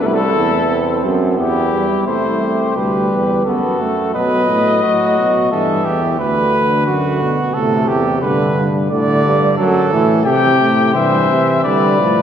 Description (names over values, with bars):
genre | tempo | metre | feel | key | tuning
classical, imitative canzona for brass ensemble | 88 BPM | 3/4 | straight | unclear | A4 = 440 Hz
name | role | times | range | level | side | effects
warm cornet | melody | 0.0-6.2, 10.3-12.2 s | G4 to G5 | -18 LUFS | left 5 dB | none
mellow trumpet | second line | 0.0-12.2 s | E4 to D5 | -18 LUFS | right 2 dB | none
clear trombone | accompaniment | 0.0-12.2 s | C3 to C4 | -19 LUFS | right 1 dB | none
clear bass trombone | bass | 0.0-12.2 s | C2 to D3 | -18 LUFS | right 1 dB | none
room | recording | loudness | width
wet church reverb, RT60 2.9 s | heard from further back in the room | -13 LUFS | side -8 dB against mid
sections
0.0-2.1 A section; 2.1-12.2 B section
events
none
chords
0.0 Am/C; 1.4 Em; 2.1 C; 3.5 F#madd11; 4.1 B; 5.5 Em/G; 6.2 Bm/D; 7.5 Am; 8.2 G; 9.6 F#m7; 10.3 C; 11.6 Bdim/D